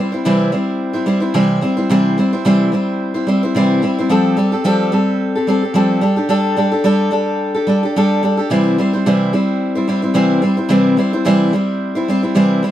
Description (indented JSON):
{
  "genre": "pop",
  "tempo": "109 BPM",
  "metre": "4/4",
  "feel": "swing 55% on 16ths",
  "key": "C major",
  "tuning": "A4 = 440 Hz",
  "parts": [
    { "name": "picked steel-string acoustic guitar", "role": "solo", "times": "0.0-12.7 s", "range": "C3 to C5", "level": "-13 LUFS", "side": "equal", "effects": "none" }
  ],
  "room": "little or no reverb",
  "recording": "dry, close 1970s-style studio recording",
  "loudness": "-13 LUFS",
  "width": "side -12 dB against mid",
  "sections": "0.0-12.7 A section",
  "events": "none",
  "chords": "0.0 C; 4.1 Fadd9; 6.0 Gsus2; 8.5 C"
}